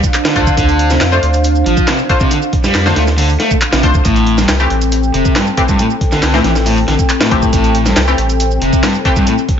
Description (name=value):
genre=breakbeat, breaks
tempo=138 BPM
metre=4/4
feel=straight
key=D minor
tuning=A4 = 445 Hz
part: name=dark analog pad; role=sustained chords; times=0.0-9.6 s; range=C4 to G5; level=-19 LUFS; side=left 1 dB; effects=chorus, vintage 12-bit sampler grit, sidechain pumping
part: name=band-passed chord stab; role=stabs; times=0.0-9.2 s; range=E3 to C5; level=-19 LUFS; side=left 3 dB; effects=lush chorus, dub echo
part: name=breakbeat sampler-style drum kit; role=drums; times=0.0-9.6 s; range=hi-hat, kick drum, snare drum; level=-15 LUFS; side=equal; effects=small room ambience
part: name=electronic shaker and handclaps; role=drums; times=0.0-9.5 s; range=none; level=-22 LUFS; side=right 1 dB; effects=overdrive, small room ambience
part: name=crunchy overdriven guitar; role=riff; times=0.2-9.3 s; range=G2 to A3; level=-16 LUFS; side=left 1 dB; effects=dub echo
part: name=saturated sub bass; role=bass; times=0.4-8.7 s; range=E1 to F2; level=-15 LUFS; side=equal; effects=none
room=light reverb, digital ambience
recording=nothing above 7.6 kHz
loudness=-10 LUFS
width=side -8 dB against mid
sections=0.0-9.6 A section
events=none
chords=0.0 Dm7; 4.1 Am7